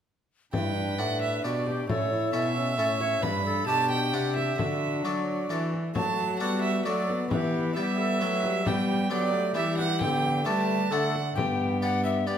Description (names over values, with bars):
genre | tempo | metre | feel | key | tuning
classical, renaissance-style consort dance | 133 BPM | 3/4 | straight | G major | A4 = 440 Hz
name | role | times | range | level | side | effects
alto recorder | melody | 0.5-12.4 s | F#4 to G5 | -34 LUFS | left 6 dB | none
warm violin | second line | 0.5-12.4 s | G4 to B5 | -30 LUFS | right 5 dB | none
clear trombone | accompaniment | 0.5-12.4 s | G3 to E4 | -32 LUFS | left 2 dB | none
harpsichord | accompaniment | 0.5-12.4 s | G2 to G5 | -33 LUFS | left 2 dB | none
rich cello | bass | 0.5-12.4 s | G2 to G3 | -30 LUFS | equal | none
frame drum | percussion | 0.5-11.6 s | none | -34 LUFS | left 3 dB | none
room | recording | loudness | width
wet recital hall reverb, RT60 1.4 s | none | -24 LUFS | side -8 dB against mid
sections
0.5-11.4 A section; 11.4-12.4 A section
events
none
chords
0.5 G; 1.9 A; 3.2 G; 4.6 D; 7.3 Em; 8.7 G; 10.0 Dsus4; 10.9 D; 11.4 G